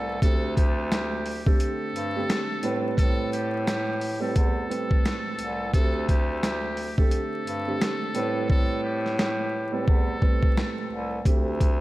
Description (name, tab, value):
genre	hip hop, boom-bap hip-hop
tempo	87 BPM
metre	4/4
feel	swing 60% on 16ths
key	A minor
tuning	A4 = 442 Hz
part	trumpet with metal mute	melody	0.0-11.2 s	G4 to A4	-34 LUFS	equal	high-pass filter, low-pass filter, analog delay
part	dark upright piano	accompaniment	0.0-11.8 s	A2 to B4	-30 LUFS	right 3 dB	high-pass filter, low-pass filter
part	bright bass clarinet	bass	0.0-11.8 s	C2 to A2	-29 LUFS	equal	none
part	boom bap sampler-style drum kit	drums	0.2-11.8 s	hi-hat, kick drum, snare drum	-24 LUFS	equal	none
room	moderate plate reverb, RT60 2.3 s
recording	dreamy mix soaked in reverb, vinyl crackle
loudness	-23 LUFS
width	side -17 dB against mid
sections	0.0-11.8 A section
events	hi-hats muted 8.5-11.3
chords	0.2 D7sus4; 2.6 Am9; 5.7 D7sus4; 8.2 Am9; 11.3 D7sus4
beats	| 0.22 0.91 1.60 2.29 | 2.98 3.67 4.36 5.05 | 5.74 6.43 7.12 7.81 | 8.50 9.19 9.88 10.57 | 11.26